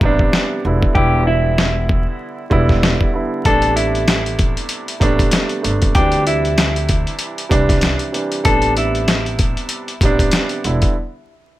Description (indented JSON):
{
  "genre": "hip hop, boom-bap hip-hop",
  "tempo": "96 BPM",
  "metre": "4/4",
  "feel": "swing 58% on 16ths",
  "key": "A minor",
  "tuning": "A4 = 440 Hz",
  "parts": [
    { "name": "clean electric guitar", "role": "melody", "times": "0.0-10.9 s", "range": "E4 to A4", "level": "-22 LUFS", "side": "left 1 dB", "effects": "high-pass filter, low-pass filter, plate reverb" },
    { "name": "warm upright piano", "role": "accompaniment", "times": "0.0-10.9 s", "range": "C3 to E4", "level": "-20 LUFS", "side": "right 3 dB", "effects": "high-pass filter, low-pass filter" },
    { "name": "upright bass", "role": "bass", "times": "0.0-10.8 s", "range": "E1 to D2", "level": "-20 LUFS", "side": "equal", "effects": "none" },
    { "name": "dusty soul sampler-style drum kit", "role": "drums", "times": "0.0-10.9 s", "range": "hi-hat, kick drum, snare drum", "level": "-17 LUFS", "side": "equal", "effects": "overdrive" }
  ],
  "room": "light reverb",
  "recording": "vinyl crackle",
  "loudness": "-14 LUFS",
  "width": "side -16 dB against mid",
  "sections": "0.0-11.6 A section",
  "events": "break 0.0-3.5, 11.0-11.6",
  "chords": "0.0 Am11; 0.6 Em7; 3.5 Am11; 6.0 D9sus4; 8.5 Am11; 10.6 Em7"
}